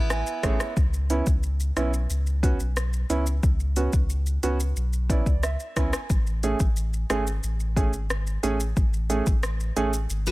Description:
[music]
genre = dancehall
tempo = 90 BPM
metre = 4/4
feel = straight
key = C# phrygian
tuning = A4 = 438 Hz
[part]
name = picked steel-string acoustic guitar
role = arpeggios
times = 0.0-0.7, 10.3 s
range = B3 to B4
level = -30 LUFS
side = right 2 dB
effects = none
[part]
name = warm sub bass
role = bass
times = 0.0-10.3 s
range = G#1 to C#2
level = -26 LUFS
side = equal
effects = none
[part]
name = dark grand piano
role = accompaniment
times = 0.1-9.9 s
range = A3 to G#5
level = -28 LUFS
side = right 3 dB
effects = sidechain pumping
[part]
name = deep house drum kit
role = drums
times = 0.1-10.3 s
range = hi-hat, kick drum, rim click, shaker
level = -25 LUFS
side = equal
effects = none
[sound]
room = digital ambience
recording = none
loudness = -22 LUFS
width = side -19 dB against mid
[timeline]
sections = 0.0-10.3 A section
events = grand piano fill 0.0-0.8, 4.8-6.1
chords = 0.0 Amaj7; 0.8 C#m7; 6.1 Amaj7

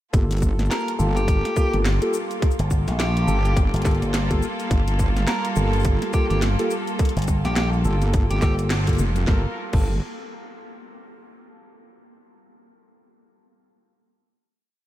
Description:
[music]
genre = glitch hop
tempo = 105 BPM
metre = 4/4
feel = swing 59% on 16ths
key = G minor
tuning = A4 = 441 Hz
[part]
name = warm chamber string section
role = sustained chords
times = 0.1-9.5 s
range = G3 to Bb4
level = -31 LUFS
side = equal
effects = vintage 12-bit sampler grit, sidechain pumping
[part]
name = mellow tine electric piano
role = stabs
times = 0.1-9.9 s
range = Bb3 to A4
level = -28 LUFS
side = equal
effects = phaser, sidechain pumping, tape echo
[part]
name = wobble bass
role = bass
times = 0.1-10.0 s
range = F1 to G1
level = -21 LUFS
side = equal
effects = chorus
[part]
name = drum and bass drum kit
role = drums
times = 0.1-9.8 s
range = crash cymbal, hi-hat, shaker, snare drum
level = -30 LUFS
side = equal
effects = overdrive, studio ambience
[part]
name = electronic kick drum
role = drums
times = 0.1-9.8 s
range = none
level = -21 LUFS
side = equal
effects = overdrive, studio ambience
[part]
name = octave-fuzz lead guitar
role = melody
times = 0.7-8.5 s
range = G4 to Bb4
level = -32 LUFS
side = equal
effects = distortion, vintage 12-bit sampler grit, tape echo
[part]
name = slap bass with an envelope filter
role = bass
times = 2.6-9.0 s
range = G1 to Bb1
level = -22 LUFS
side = equal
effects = tube saturation
[sound]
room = light reverb, digital ambience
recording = none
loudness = -19 LUFS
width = side -14 dB against mid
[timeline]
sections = 0.1-9.3 drop; 9.3-11.6 final chord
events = drop 0.1-9.3; band accent 8.7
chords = 0.1 Gm9

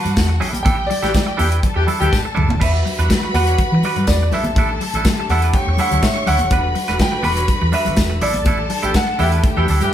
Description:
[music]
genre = disco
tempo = 123 BPM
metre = 4/4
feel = straight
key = unclear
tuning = A4 = 440 Hz
[part]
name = clear concert grand piano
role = melody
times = 0.0-9.9 s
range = D5 to B5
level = -24 LUFS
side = equal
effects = none
[part]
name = warm studio violin section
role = second line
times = 0.0-9.9 s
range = F#4 to C#6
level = -26 LUFS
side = left 1 dB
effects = none
[part]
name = semi-hollow electric guitar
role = accompaniment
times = 0.0-9.9 s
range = G3 to C#5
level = -24 LUFS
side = right 5 dB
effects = none
[part]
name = hollow-body short-scale fingered electric bass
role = bass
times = 0.0-9.9 s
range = D#1 to E3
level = -19 LUFS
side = equal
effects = none
[part]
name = modern studio drum kit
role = drums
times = 0.1-9.9 s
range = crash cymbal, hi-hat, kick drum, snare drum, toms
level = -20 LUFS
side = equal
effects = none
[part]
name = congas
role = percussion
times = 0.1-9.9 s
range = none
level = -28 LUFS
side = left 3 dB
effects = none
[part]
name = tambourine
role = percussion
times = 0.2-9.1 s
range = none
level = -33 LUFS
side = left 4 dB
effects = none
[part]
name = mellow horn section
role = stabs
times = 1.0-2.2, 8.8-9.9 s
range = E3 to G4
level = -22 LUFS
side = left 3 dB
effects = none
[part]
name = clear studio string section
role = sustained chords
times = 2.6-9.9 s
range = D3 to G4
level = -28 LUFS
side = equal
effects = none
[sound]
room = wet studio reverb, RT60 0.6 s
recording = band playing live in one room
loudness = -14 LUFS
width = side -10 dB against mid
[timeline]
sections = 0.0-9.9 A section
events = band accent 0.7-2.6, 8.5-9.9; drum fill 2.1-2.6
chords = 0.4 A7sus4; 2.6 Em9; 4.3 A7sus4; 6.5 Em9; 8.2 A7sus4

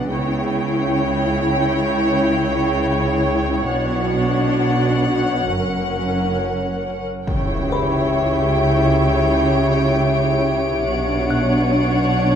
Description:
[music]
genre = cinematic, suspense film score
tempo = 67 BPM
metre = 4/4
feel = straight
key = unclear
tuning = A4 = 440 Hz
[part]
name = warm studio violin section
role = melody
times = 0.0-12.4 s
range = F#5 to G5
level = -26 LUFS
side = left 1 dB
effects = none
[part]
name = warm studio viola section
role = accompaniment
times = 0.0-12.4 s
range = C#4 to C#5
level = -22 LUFS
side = left 1 dB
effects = none
[part]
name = warbly tape-like pad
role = sustained chords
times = 0.0-12.4 s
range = B3 to G5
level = -24 LUFS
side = left 2 dB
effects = chorus, built-in reverb
[part]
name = warm studio cello section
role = bass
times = 0.0-12.4 s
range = F#2 to C#3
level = -23 LUFS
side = right 2 dB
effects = none
[part]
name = warm studio double bass section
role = bass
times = 0.0-12.4 s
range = F#1 to C#2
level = -23 LUFS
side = right 2 dB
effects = none
[part]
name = music box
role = texture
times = 0.0-1.4, 7.7-12.4 s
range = B4 to F#6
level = -28 LUFS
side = left 4 dB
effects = none
[part]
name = impact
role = sound effects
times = 7.3-10.9 s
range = none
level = -27 LUFS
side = left 1 dB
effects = none
[part]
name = rich studio violin section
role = texture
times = 7.3-12.4 s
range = C#5 to D7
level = -30 LUFS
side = left 4 dB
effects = none
[sound]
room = wet recital hall reverb, RT60 1.4 s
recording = none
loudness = -16 LUFS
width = side -8 dB against mid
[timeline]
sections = 0.0-7.3 A section; 7.3-12.4 A section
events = impact 7.3-10.9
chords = 0.1 C#dim; 3.7 Bmadd9; 5.5 F#; 7.3 C#dim; 10.9 Bmadd9

